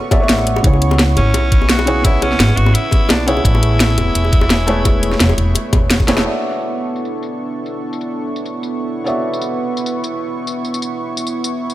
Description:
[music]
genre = liquid drum and bass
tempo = 171 BPM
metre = 4/4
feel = swing 54% on 16ths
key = B dorian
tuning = A4 = 440 Hz
[part]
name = raspy tenor saxophone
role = melody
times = 0.0-5.9 s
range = C#4 to F#4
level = -22 LUFS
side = equal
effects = tape echo
[part]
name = felt-muted upright piano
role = accompaniment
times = 0.0-11.7 s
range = C#3 to E5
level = -22 LUFS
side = equal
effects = tape echo
[part]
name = warm analog pad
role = sustained chords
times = 0.0-11.7 s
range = A3 to C#6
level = -23 LUFS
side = right 1 dB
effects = chorus, sidechain pumping
[part]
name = drum and bass drum kit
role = drums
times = 0.1-11.7 s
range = hi-hat, snare drum, tambourine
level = -18 LUFS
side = equal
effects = overdrive, low-pass filter on hats, low-pass filter on snare, low-pass filter on perc
[part]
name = electronic kick drum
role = drums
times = 0.1-6.1 s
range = none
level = -14 LUFS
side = equal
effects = none
[part]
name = bongos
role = percussion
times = 0.1-6.2 s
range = none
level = -25 LUFS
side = left 4 dB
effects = none
[part]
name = upright bass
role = bass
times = 0.3-6.2 s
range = E1 to C#2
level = -16 LUFS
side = equal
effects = none
[sound]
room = light reverb, small room ambience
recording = none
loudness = -13 LUFS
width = side -15 dB against mid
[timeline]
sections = 0.0-6.3 A section; 6.3-11.7 B section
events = drum fill 6.1; band accent 6.2; filter sweep on drum 6.3-11.7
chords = 0.0 Bm11; 0.6 C#m7; 3.5 Amaj9; 6.3 Bm11

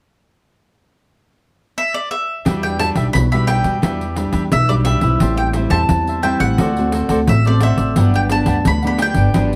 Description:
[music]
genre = samba and choro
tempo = 87 BPM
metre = 4/4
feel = straight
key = E minor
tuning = A4 = 440 Hz
[part]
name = mandolin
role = melody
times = 1.8-9.6 s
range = D5 to B5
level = -23 LUFS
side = equal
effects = none
[part]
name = cavaquinho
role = accompaniment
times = 2.5-9.6 s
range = D4 to A5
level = -28 LUFS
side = equal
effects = none
[part]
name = nylon-string guitar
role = accompaniment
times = 2.5-9.6 s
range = G2 to F#4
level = -24 LUFS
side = equal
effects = none
[part]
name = upright bass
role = bass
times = 2.5-9.6 s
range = G1 to E2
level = -20 LUFS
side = equal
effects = none
[part]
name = pandeiro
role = percussion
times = 2.5-9.6 s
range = none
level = -24 LUFS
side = equal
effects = none
[sound]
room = moderate large studio reverb, RT60 0.8 s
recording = none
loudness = -17 LUFS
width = mono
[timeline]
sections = 0.0-2.5 A section; 2.5-9.6 B section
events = none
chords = 0.0 N.C.; 2.5 Em9; 5.2 Am7; 6.6 D7; 8.0 Gmaj7

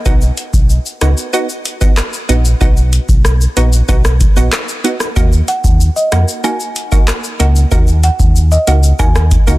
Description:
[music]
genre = dancehall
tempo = 94 BPM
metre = 4/4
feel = straight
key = Eb minor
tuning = A4 = 444 Hz
[part]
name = wavetable chord stab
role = accompaniment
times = 0.0-9.6 s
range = Bb3 to F#4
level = -20 LUFS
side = right 3 dB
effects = none
[part]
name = sub bass with octave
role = bass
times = 0.1-9.6 s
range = Bb1 to F2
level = -11 LUFS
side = equal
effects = none
[part]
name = booming analog drum machine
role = drums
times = 0.1-9.6 s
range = handclaps, hi-hat, kick drum, rim click, shaker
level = -13 LUFS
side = equal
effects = none
[part]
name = tube shaker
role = percussion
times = 0.1-9.6 s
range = none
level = -30 LUFS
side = left 3 dB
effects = none
[part]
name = folk marimba with medium mallets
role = melody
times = 5.5-9.4 s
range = Eb5 to Ab5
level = -20 LUFS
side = right 1 dB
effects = tape echo
[sound]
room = little or no reverb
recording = dense, heavily limited modern master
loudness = -10 LUFS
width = side -18 dB against mid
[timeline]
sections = 0.0-9.6 A section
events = none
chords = 0.1 B; 5.2 Ebm

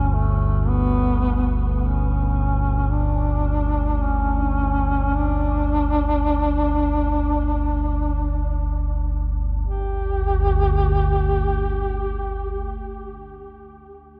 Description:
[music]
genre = dark ambient drone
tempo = free time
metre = none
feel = none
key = unclear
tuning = A4 = 440 Hz
[part]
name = mellow duduk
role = melody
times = 0.0-12.7 s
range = A3 to G4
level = -27 LUFS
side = equal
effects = tape echo
[part]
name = deep rumbling drone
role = drone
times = 0.0-12.7 s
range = G1 to D2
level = -24 LUFS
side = equal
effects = built-in reverb, lush chorus
[sound]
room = moderate huge ambient reverb, RT60 7.3 s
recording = dreamy mix soaked in reverb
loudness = -22 LUFS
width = mono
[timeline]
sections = 0.0-9.7 A section; 9.7-14.2 B section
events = none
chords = 0.0 G5

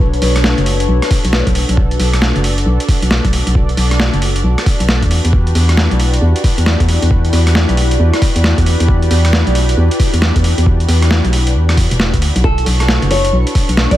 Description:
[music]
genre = UK garage, two-step garage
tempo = 135 BPM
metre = 4/4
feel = swing 63% on 16ths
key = B minor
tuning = A4 = 437 Hz
[part]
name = warm analog pad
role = sustained chords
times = 0.0-14.0 s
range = D4 to C#6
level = -24 LUFS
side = right 1 dB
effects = chorus, sidechain pumping
[part]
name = organ-like FM bass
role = bass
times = 0.0-14.0 s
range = E1 to E2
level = -13 LUFS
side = equal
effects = none
[part]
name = electronic kick drum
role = drums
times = 0.0-14.0 s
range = none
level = -14 LUFS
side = equal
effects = none
[part]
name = warbly tape-like pad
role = texture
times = 0.0-14.0 s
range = D4 to A5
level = -22 LUFS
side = left 2 dB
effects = chorus, built-in reverb, sidechain pumping
[part]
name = boom bap sampler-style drum kit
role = drums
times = 0.1-14.0 s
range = hi-hat, rim click, snare drum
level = -18 LUFS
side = equal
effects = none
[part]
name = nylon-string guitar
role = melody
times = 12.4-14.0 s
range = A4 to D5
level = -18 LUFS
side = left 1 dB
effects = vintage 12-bit sampler grit, digital delay
[sound]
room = little or no reverb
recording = vinyl crackle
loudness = -10 LUFS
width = side -14 dB against mid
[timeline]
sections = 0.0-14.0 A section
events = none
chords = 0.0 Bm7; 5.1 Em7; 12.4 Bm7

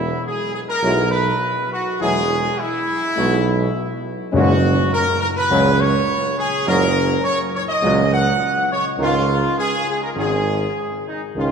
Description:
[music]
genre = classical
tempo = 103 BPM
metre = 4/4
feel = straight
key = F# major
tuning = A4 = 439 Hz
[part]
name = clear trumpet section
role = melody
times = 0.0-11.5 s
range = D#4 to F#5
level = -20 LUFS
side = equal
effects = none
[part]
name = warm tuba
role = bass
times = 0.0-11.5 s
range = E1 to C#2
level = -22 LUFS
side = right 3 dB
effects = none
[part]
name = mellow French horn section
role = sustained chords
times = 0.8-11.5 s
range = G#3 to E4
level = -27 LUFS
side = left 4 dB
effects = none
[part]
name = warm trombone section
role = sustained chords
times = 0.8-11.5 s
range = G#2 to F#3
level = -27 LUFS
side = right 2 dB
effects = none
[part]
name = timpani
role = percussion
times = 4.3-5.2 s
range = F#2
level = -23 LUFS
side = left 1 dB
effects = none
[sound]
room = wet church reverb, RT60 3.4 s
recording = none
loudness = -16 LUFS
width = side -6 dB against mid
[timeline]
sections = 0.0-11.5 A section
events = none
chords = 0.0 Eadd9; 4.3 F#add9; 9.0 C#add9

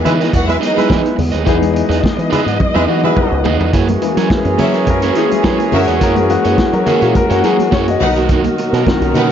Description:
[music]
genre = disco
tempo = 105 BPM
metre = 4/4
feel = straight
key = unclear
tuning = A4 = 440 Hz
[part]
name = clear concert grand piano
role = accompaniment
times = 0.0-9.3 s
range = D#3 to D#5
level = -18 LUFS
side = left 7 dB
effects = none
[part]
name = warm studio string section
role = sustained chords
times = 0.0-9.3 s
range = B2 to D#5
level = -20 LUFS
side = equal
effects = none
[part]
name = warm horn section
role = stabs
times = 0.0-9.3 s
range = E3 to B4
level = -19 LUFS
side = right 2 dB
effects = none
[part]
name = picked electric bass with an envelope filter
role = bass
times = 0.0-9.3 s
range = B1 to F#3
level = -18 LUFS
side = equal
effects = none
[part]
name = electric guitar at the edge of break-up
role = accompaniment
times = 0.1-9.3 s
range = A#3 to D#5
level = -20 LUFS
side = right 10 dB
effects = warbly pitch drift
[part]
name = vintage drum kit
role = drums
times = 0.1-9.3 s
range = hi-hat, kick drum, snare drum, toms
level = -18 LUFS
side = equal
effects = none
[part]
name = congas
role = percussion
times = 0.1-9.3 s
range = none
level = -25 LUFS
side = left 7 dB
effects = none
[part]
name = clear studio string section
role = second line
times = 0.3-0.8, 4.6-9.3 s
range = C#4 to F#5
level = -21 LUFS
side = right 1 dB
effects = none
[sound]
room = light reverb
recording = nothing above 7.5 kHz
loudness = -11 LUFS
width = side -9 dB against mid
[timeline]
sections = 0.0-3.7 A section; 3.7-9.3 B section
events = drum fill 2.6-3.7; grand piano fill 2.9-3.7; grand piano solo 3.7-9.3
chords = 0.0 Emaj7; 3.7 F#9; 8.0 Bmaj7

